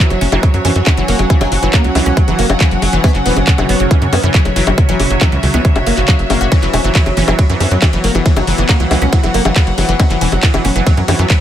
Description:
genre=psychedelic trance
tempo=138 BPM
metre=4/4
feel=straight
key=unclear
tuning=A4 = 440 Hz
part: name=oud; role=melody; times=0.0-11.4 s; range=C#3 to C#4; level=-20 LUFS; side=equal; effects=phaser, sidechain pumping, ping-pong delay
part: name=overtone-sweeping drone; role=sustained chords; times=0.0-11.4 s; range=F#3 to C#4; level=-22 LUFS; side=equal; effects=chorus, built-in reverb, sidechain pumping
part: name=wide unison pluck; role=riff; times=0.0-11.3 s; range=E3 to F#4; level=-20 LUFS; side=moving between left 5 dB and right 6 dB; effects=auto-pan, sidechain pumping, ping-pong delay
part: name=drum and bass drum kit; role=drums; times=0.0-11.4 s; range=bongos, handclaps, hi-hat, ride cymbal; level=-18 LUFS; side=left 2 dB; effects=none
part: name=electronic kick drum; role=drums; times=0.0-11.4 s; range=none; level=-12 LUFS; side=equal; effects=none
part: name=warm chamber string section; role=texture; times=0.0-11.4 s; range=F#4 to B5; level=-22 LUFS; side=equal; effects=sidechain pumping
part: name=tight sequencer bass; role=bass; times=0.1-11.3 s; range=E1 to F#2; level=-16 LUFS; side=equal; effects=none
part: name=metallic wobble bass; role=second line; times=0.3-2.4, 7.3-8.8 s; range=F#3 to A#3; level=-33 LUFS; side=left 5 dB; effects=none
room=little or no reverb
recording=none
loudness=-10 LUFS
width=side -11 dB against mid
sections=0.0-11.4 A section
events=none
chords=0.0 F#5

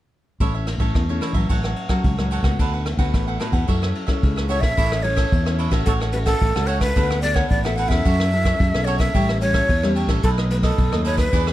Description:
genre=samba and choro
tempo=110 BPM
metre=4/4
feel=straight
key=A major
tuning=A4 = 440 Hz
part: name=cavaquinho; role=accompaniment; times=0.4-11.5 s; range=D4 to F#5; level=-29 LUFS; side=right 5 dB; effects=none
part: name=nylon-string guitar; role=accompaniment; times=0.4-11.5 s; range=F#2 to A4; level=-27 LUFS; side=left 3 dB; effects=none
part: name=fingered electric bass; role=bass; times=0.4-11.5 s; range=A1 to F#2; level=-22 LUFS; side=equal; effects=none
part: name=vintage brush drum kit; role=drums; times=0.4-11.5 s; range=crash cymbal, kick drum, ride cymbal, rim click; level=-22 LUFS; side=equal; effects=none
part: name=breathy jazz flute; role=melody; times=4.5-11.5 s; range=A4 to F#5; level=-23 LUFS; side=right 1 dB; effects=plate reverb
room=light reverb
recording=dark, warm production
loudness=-18 LUFS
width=side -14 dB against mid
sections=0.4-4.8 A section; 4.8-11.5 B section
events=none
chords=0.4 A; 1.5 F#m/A; 2.6 D6; 3.7 F#m7; 4.8 A; 5.9 F#m/A; 7.0 D6; 8.1 F#m7; 9.1 A7; 10.2 B7

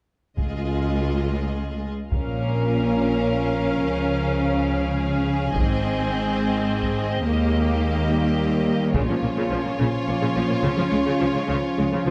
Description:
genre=cinematic, epic orchestral film score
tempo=70 BPM (dotted quarters)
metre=6/8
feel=straight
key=unclear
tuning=A4 = 442 Hz
part: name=rich studio violin section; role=second line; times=0.4-12.1 s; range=F4 to Eb5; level=-33 LUFS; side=equal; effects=none
part: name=clear symphonic viola section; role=accompaniment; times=0.4-12.1 s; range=Db3 to F4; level=-30 LUFS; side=equal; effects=none
part: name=rich symphonic cello section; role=bass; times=0.4-12.1 s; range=Db2 to Db3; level=-29 LUFS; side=equal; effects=none
part: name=rich symphonic double bass section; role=bass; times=0.4-12.1 s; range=Ab1 to Eb2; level=-29 LUFS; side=equal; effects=none
part: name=taiko ensemble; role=drums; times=0.4-10.0 s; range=none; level=-29 LUFS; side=equal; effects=none
part: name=rich symphonic violin section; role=melody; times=2.1-12.1 s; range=Db5 to F5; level=-35 LUFS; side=equal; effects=none
part: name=mellow French horn section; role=sustained chords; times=2.1-12.1 s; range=F3 to Db4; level=-30 LUFS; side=equal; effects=none
room=moderate concert hall reverb, RT60 2.0 s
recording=none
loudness=-23 LUFS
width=mono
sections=0.4-2.1 A section; 2.1-12.1 B section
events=build-up 2.1-12.1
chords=0.4 Dbadd9; 2.1 Bbm; 3.8 Db; 5.6 Ab; 7.3 Eb; 8.9 Bbm; 10.6 Db

